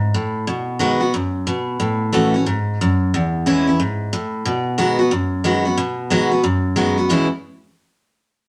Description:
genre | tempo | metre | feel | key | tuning
rock | 181 BPM | 4/4 | swing 63% on 8ths | E major | A4 = 440 Hz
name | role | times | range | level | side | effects
picked steel-string acoustic guitar | solo | 0.0-7.3 s | E2 to F#4 | -19 LUFS | equal | none
room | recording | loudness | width
moderate studio reverb, RT60 0.7 s | none | -19 LUFS | mono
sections
0.0-5.8 A section; 5.8-7.1 B section; 7.1-8.4 C section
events
none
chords
0.5 B6; 1.8 A6; 3.1 E6; 4.5 B6; 7.1 E6

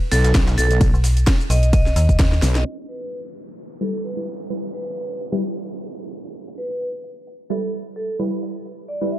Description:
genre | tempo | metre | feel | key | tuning
bass house | 130 BPM | 4/4 | swing 56% on 16ths | E minor | A4 = 440 Hz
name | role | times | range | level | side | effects
vibraphone with hard mallets | melody | 0.1-9.2 s | A4 to E5 | -27 LUFS | right 1 dB | tape echo
wobble bass | bass | 0.1-2.6 s | B1 | -17 LUFS | equal | chorus, overdrive, sidechain pumping
dusty soul sampler-style drum kit | drums | 0.1-9.2 s | hi-hat, snare drum | -36 LUFS | right 1 dB | none
garage drum kit | drums | 0.1-2.6 s | hi-hat, ride cymbal, shaker, snare drum | -27 LUFS | equal | overdrive
electronic kick drum | drums | 0.3-2.3 s | none | -17 LUFS | equal | none
metallic FM bass | bass | 0.9-2.4 s | B1 to D#2 | -17 LUFS | equal | sidechain pumping
downlifter | sound effects | 2.8-6.3 s | none | -37 LUFS | right 1 dB | none
orchestra-hit-like synth stab | stabs | 3.8-9.1 s | G3 to B4 | -26 LUFS | equal | built-in reverb, sidechain pumping, tape echo
room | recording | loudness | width
digital ambience | dark, warm production, low-pass filter | -18 LUFS | side -14 dB against mid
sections
0.0-2.7 A section; 2.7-9.2 B section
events
drop 0.0-2.7; drum fill 2.3-2.7; band accent 2.5; filter sweep on synth stab 2.7-9.2; filter sweep 2.7-9.2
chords
0.0 B; 2.7 Em

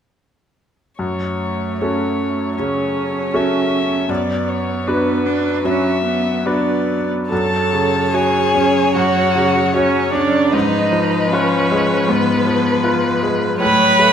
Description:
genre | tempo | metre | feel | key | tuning
classical, slow romantic movement for piano quintet | 76 BPM | 4/4 | uneven beats, rubato | F# minor | A4 = 440 Hz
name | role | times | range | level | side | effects
warm violin | melody | 1.0-14.1 s | B4 to B5 | -21 LUFS | left 5 dB | none
rich cello | second line | 1.0-14.1 s | F3 to D4 | -24 LUFS | right 5 dB | none
bright grand piano | accompaniment | 1.0-14.1 s | F#2 to C#5 | -19 LUFS | equal | none
rich violin | second line | 7.3-14.1 s | Cb5 to C#5 | -22 LUFS | left 2 dB | none
rich viola | accompaniment | 7.3-14.1 s | Cb4 to B4 | -18 LUFS | right 3 dB | none
room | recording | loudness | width
wet recital hall reverb, RT60 1.4 s | none | -15 LUFS | side -8 dB against mid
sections
1.0-7.3 A section; 7.3-14.1 B section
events
none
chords
1.0 F#m; 4.1 Bm/F#; 7.3 F#m; 10.5 Fdim/Ab; 13.6 F#m/A

